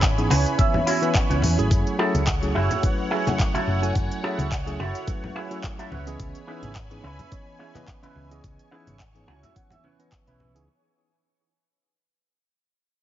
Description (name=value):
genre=nu-disco, nu disco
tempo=107 BPM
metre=4/4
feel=swing 54% on 16ths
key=unclear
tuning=A4 = 443 Hz
part: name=lush unison pad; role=sustained chords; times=0.0-10.7 s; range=C#5 to C#6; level=-34 LUFS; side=equal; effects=chorus, phaser, sidechain pumping
part: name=electric guitar with an envelope filter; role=riff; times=0.0-10.6 s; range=C#4 to G#5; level=-28 LUFS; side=right 3 dB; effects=analog chorus, low-pass filter, ping-pong delay
part: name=hollow-body short-scale picked electric bass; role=bass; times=0.0-10.7 s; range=F#1 to E2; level=-25 LUFS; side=equal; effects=none
part: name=electronic kick drum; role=drums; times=0.0-10.2 s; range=none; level=-24 LUFS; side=equal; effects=studio reverb
part: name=pop drum kit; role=drums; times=0.0-10.7 s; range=handclaps, hi-hat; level=-30 LUFS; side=equal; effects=studio reverb
part: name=tine electric piano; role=accompaniment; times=0.2-10.7 s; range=E3 to G#5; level=-29 LUFS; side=equal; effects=medium stereo tremolo, sidechain pumping, ping-pong delay
part: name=congas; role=percussion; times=0.3-10.5 s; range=none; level=-30 LUFS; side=left 2 dB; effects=none
room=light reverb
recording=heavily compressed radio sound, nothing above 7.5 kHz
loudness=-21 LUFS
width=side -12 dB against mid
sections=0.0-10.7 A section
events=fade-out 0.0-10.7; clean electric guitar fill 0.0-1.7, 9.0-10.7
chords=0.0 C#m7; 1.7 F#m7; 5.9 C#m7